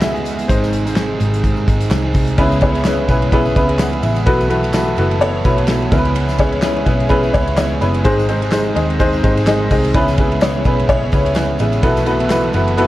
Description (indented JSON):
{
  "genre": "piano-driven pop",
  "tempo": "127 BPM",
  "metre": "4/4",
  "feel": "swing 56% on 16ths",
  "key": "C# minor",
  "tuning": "A4 = 441 Hz",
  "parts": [
    { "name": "bright upright piano", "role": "accompaniment", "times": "0.0-12.9 s", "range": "G#2 to B5", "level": "-17 LUFS", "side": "left 1 dB", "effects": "plate reverb" },
    { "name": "chorused pulse-width pad", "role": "sustained chords", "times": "0.0-12.9 s", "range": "B#2 to F#4", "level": "-26 LUFS", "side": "right 1 dB", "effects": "none" },
    { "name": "overdriven electric guitar", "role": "riff", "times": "0.0-12.9 s", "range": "G#2 to A4", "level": "-23 LUFS", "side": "right 3 dB", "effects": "spring reverb" },
    { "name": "vintage muted picked electric bass", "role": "bass", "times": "0.0-12.9 s", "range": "F#1 to D#2", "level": "-19 LUFS", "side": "equal", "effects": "none" },
    { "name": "modern studio drum kit", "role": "drums", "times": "0.0-12.9 s", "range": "crash cymbal, handclaps, hi-hat, kick drum, ride cymbal, snare drum", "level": "-19 LUFS", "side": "equal", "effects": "none" },
    { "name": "tambourine", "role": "percussion", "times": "0.0-12.7 s", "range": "none", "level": "-42 LUFS", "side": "left 7 dB", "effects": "none" }
  ],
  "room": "light reverb",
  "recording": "cassette tape",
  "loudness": "-13 LUFS",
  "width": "side -15 dB against mid",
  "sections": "0.0-2.4 A section; 2.4-12.9 B section",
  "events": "upright piano solo 0.0-2.4",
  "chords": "0.5 G#; 2.4 C#m7; 4.3 B7sus4; 5.9 C#m7; 8.1 G#; 9.9 C#m7; 11.8 B7sus4"
}